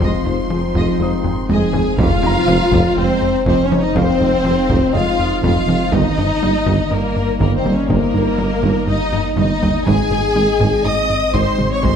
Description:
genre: cinematic, hybrid orchestral and electronic film score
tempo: 122 BPM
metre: 4/4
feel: straight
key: F minor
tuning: A4 = 440 Hz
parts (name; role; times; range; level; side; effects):
- warm symphonic violin section; melody; 0.0-12.0 s; Bb4 to Eb6; -23 LUFS; left 3 dB; none
- warm symphonic violin section; second line; 0.0-12.0 s; Bb3 to Eb5; -24 LUFS; left 3 dB; none
- warm studio viola section; accompaniment; 0.0-12.0 s; Ab3 to Eb5; -24 LUFS; right 1 dB; none
- dark analog pad; sustained chords; 0.0-12.0 s; G3 to Eb5; -24 LUFS; left 1 dB; chorus, phaser
- mellow French horn section; sustained chords; 0.0-12.0 s; Bb3 to Eb5; -24 LUFS; left 5 dB; none
- soft round pluck; arpeggios; 0.0-12.0 s; Eb3 to Ab4; -26 LUFS; right 2 dB; none
- tight sequencer bass; riff; 0.0-12.0 s; F2 to Ab3; -22 LUFS; left 2 dB; none
- dark studio cello section; bass; 0.0-11.9 s; F2 to F3; -26 LUFS; right 4 dB; none
- dark tuba; bass; 0.0-11.9 s; F1 to Ab1; -24 LUFS; right 5 dB; none
- sub bass with octave; bass; 0.0-12.0 s; F1 to Ab1; -27 LUFS; equal; none
- warm studio double bass section; bass; 0.0-11.9 s; F1 to F2; -25 LUFS; right 4 dB; none
- taiko ensemble; drums; 0.0-12.0 s; none; -24 LUFS; equal; none
- felt-muted upright piano; texture; 0.0-12.0 s; C5 to Eb6; -31 LUFS; left 1 dB; none
- impact; sound effects; 2.0-4.0 s; none; -26 LUFS; equal; none
room: moderate recital hall reverb, RT60 1.3 s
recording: none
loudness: -14 LUFS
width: side -7 dB against mid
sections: 0.0-2.0 A section; 2.0-12.0 B section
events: drum fill 1.3-2.0, 9.1-9.9; impact 2.0-4.0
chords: 0.0 Fm7; 5.9 Eb/G; 9.9 Ab

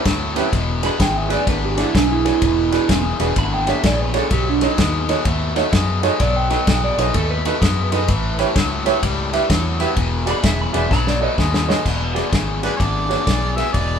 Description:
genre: electric blues shuffle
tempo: 127 BPM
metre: 4/4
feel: swing 64% on 8ths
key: E mixolydian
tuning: A4 = 438 Hz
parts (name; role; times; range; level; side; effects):
- overdriven electric guitar; riff; 0.0-14.0 s; E2 to A3; -23 LUFS; left 4 dB; none
- vintage muted fingered electric bass; bass; 0.1-14.0 s; E1 to F#2; -23 LUFS; equal; none
- warm soul drum kit; drums; 0.1-13.9 s; crash cymbal, kick drum, ride cymbal, snare drum; -21 LUFS; left 1 dB; none
- bright upright piano; accompaniment; 0.4-13.7 s; C#4 to E5; -23 LUFS; right 4 dB; none
- electric guitar through a small old amp; second line; 0.9-11.8 s; D4 to B5; -22 LUFS; right 5 dB; none
- clear harmonica; melody; 12.6-14.0 s; B4 to E5; -24 LUFS; right 2 dB; overdrive
room: moderate large studio reverb, RT60 0.9 s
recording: band playing live in one room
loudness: -16 LUFS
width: side -7 dB against mid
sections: 0.0-11.9 A section; 11.9-14.0 B section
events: clean electric guitar solo 0.0-11.9; drum fill 10.9-11.9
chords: 0.0 A9; 0.5 E9; 4.3 B7; 8.1 A9; 10.0 E9; 10.9 B9; 11.9 E9

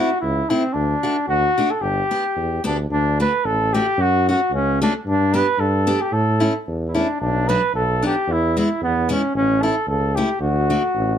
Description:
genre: alpine folk, alpine dance band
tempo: 112 BPM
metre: 2/4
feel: straight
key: D major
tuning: A4 = 438 Hz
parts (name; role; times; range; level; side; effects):
- mellow flugelhorn; melody; 0.0-11.2 s; B3 to B4; -20 LUFS; equal; plate reverb
- picked steel-string acoustic guitar; accompaniment; 0.0-10.8 s; F#3 to G4; -22 LUFS; left 1 dB; none
- clear tuba; bass; 0.2-11.2 s; G1 to A2; -22 LUFS; equal; none
room: moderate small room reverb, RT60 0.6 s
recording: dark, warm production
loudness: -17 LUFS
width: side -9 dB against mid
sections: 0.0-2.9 A section; 2.9-11.2 B section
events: none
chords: 0.0 Am; 0.8 D; 1.8 G; 2.9 D; 4.0 F#m; 5.1 G; 6.1 A; 7.2 Bm; 8.3 E; 9.3 A; 10.4 D

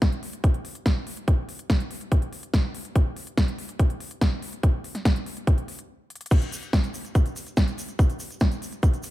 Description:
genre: trance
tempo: 143 BPM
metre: 4/4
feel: straight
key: none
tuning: none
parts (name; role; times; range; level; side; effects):
- big-room dance drum kit; drums; 0.0-9.1 s; crash cymbal, hi-hat, snare drum; -30 LUFS; equal; overdrive, small room ambience
- electronic kick drum; drums; 0.0-8.9 s; none; -22 LUFS; equal; small room ambience
- egg shaker; percussion; 6.3-9.1 s; none; -41 LUFS; right 3 dB; none
room: little or no reverb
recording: none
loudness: -23 LUFS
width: side -16 dB against mid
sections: 0.0-6.3 A section; 6.3-9.1 B section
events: stop 5.9-6.3; drum fill 6.1; drop 6.3-9.1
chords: none

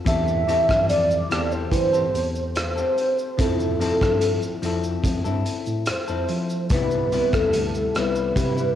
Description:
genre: indie pop, bedroom pop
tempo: 72 BPM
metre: 4/4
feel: straight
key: unclear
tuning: A4 = 440 Hz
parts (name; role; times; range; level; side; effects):
- semi-hollow electric guitar; accompaniment; 0.0-8.8 s; C3 to A4; -27 LUFS; left 6 dB; wide subtle chorus, vibrato effect, cassette tape
- warm velvety synth lead; melody; 0.1-8.8 s; A4 to E5; -22 LUFS; right 1 dB; lush chorus, cassette tape, plate reverb, analog delay
- tine electric piano; bass; 0.1-8.7 s; C2 to F3; -27 LUFS; equal; medium stereo tremolo
- raw garage drum kit; drums; 0.1-8.8 s; hi-hat, kick drum, rim click, shaker; -27 LUFS; equal; none
room: moderate small room reverb, RT60 0.5 s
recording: home recording on cassette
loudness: -20 LUFS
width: side -10 dB against mid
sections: 0.0-8.8 A section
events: none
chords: 0.1 Am7/E; 3.4 Fmaj7; 6.7 Cmaj7

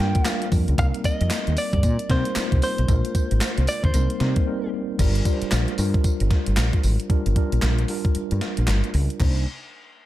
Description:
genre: R&B, new jack swing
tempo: 114 BPM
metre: 4/4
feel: swing 61% on 16ths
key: unclear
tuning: A4 = 440 Hz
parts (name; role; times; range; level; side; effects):
- direct-recorded clean electric guitar; melody; 0.0-4.7 s; C5 to G5; -29 LUFS; equal; spring reverb, tape echo
- mellow tine electric piano; accompaniment; 0.0-9.4 s; G3 to C5; -28 LUFS; equal; medium stereo tremolo, low-pass filter
- woody fretless electric bass; bass; 0.0-9.4 s; G1 to C3; -21 LUFS; equal; none
- gated 80s digital drum machine; drums; 0.1-9.4 s; crash cymbal, handclaps, hi-hat, kick drum, snare drum, tambourine; -23 LUFS; equal; gated reverb, gated reverb snare
- group handclap; percussion; 0.3-9.4 s; none; -37 LUFS; right 5 dB; none
room: little or no reverb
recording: none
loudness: -20 LUFS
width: side -14 dB against mid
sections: 0.0-5.0 A section; 5.0-9.2 B section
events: break 4.5-5.0; filter sweep on tine electric piano 5.0-9.2; kick muted 8.1-9.2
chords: 0.0 Gm7; 0.8 Cm7; 2.9 Bb7; 3.9 Cm7; 5.0 Gm7; 9.2 Cm9

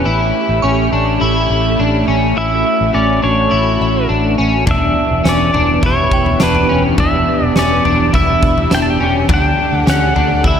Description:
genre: dream pop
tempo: 104 BPM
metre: 4/4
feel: straight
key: E dorian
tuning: A4 = 440 Hz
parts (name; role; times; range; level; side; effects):
- string machine, violas; sustained chords; 0.0-10.6 s; D3 to A4; -18 LUFS; right 1 dB; ensemble chorus, shimmer reverb
- electric guitar at the edge of break-up; arpeggios; 0.0-10.6 s; C#4 to E4; -17 LUFS; left 2 dB; analog chorus, digital delay, shimmer reverb
- vintage muted fingered electric bass; bass; 0.0-10.6 s; E1 to D2; -18 LUFS; equal; none
- glassy synth bell; texture; 0.6-7.1 s; E5 to C#6; -28 LUFS; right 3 dB; chorus, tremolo, digital delay, shimmer reverb
- pedal steel guitar; melody; 2.4-10.6 s; B4 to A5; -18 LUFS; equal; digital delay, shimmer reverb
- huge arena drum kit; drums; 4.7-10.6 s; kick drum, snare drum, toms; -17 LUFS; equal; none
room: moderate plate reverb, RT60 2.9 s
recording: none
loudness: -11 LUFS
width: side -8 dB against mid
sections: 0.0-10.6 A section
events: none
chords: 0.1 A7; 4.7 Em7; 9.3 Dsus4

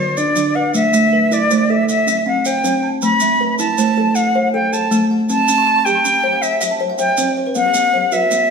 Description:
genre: southern african traditional, mbira-style interlocking cycle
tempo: 106 BPM (dotted quarters)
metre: 12/8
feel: straight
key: A equiheptatonic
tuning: A4 = 441 Hz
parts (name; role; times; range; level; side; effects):
- bright concert flute; melody; 0.0-8.5 s; C5+35c to B5-34c; -16 LUFS; equal; none
- kalimba; arpeggios; 0.0-8.5 s; D3 to E5; -20 LUFS; left 3 dB; none
- kalimba; arpeggios; 0.0-8.5 s; D3 to D6; -21 LUFS; right 5 dB; none
- maracas; percussion; 0.2-8.5 s; none; -26 LUFS; right 3 dB; none
room: wet stone room reverb, RT60 1.4 s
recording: band playing live in one room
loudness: -13 LUFS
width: side -5 dB against mid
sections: 0.0-8.5 A section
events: kalimba fill 5.4-7.6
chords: 0.0 D; 0.7 Am; 1.9 C; 3.0 Am; 5.3 C; 7.6 Bm

